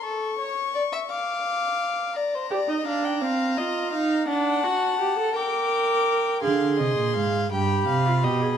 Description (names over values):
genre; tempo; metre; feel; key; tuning
classical, baroque-style fugue for string quartet; 56 BPM (dotted quarters); 6/8; straight; G minor; A4 = 438 Hz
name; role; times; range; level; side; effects
warm violin; melody; 0.0-8.6 s; A5 to D6; -28 LUFS; left 8 dB; none
warm violin; second line; 0.0-8.6 s; A4 to G5; -28 LUFS; left 2 dB; none
rich viola; accompaniment; 2.5-8.6 s; C4 to Bb4; -25 LUFS; right 4 dB; none
rich cello; bass; 6.4-8.6 s; G2 to D3; -24 LUFS; right 4 dB; none
room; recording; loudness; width
moderate recital hall reverb, RT60 1.6 s; dark, warm production; -22 LUFS; side -8 dB against mid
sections
0.0-6.4 A section; 6.4-8.6 B section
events
none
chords
0.0 A; 1.1 Dm/F; 2.2 Gm (rootless); 3.2 Cm; 4.3 D; 5.4 Gm/Bb; 6.4 Dm7b5; 7.5 G7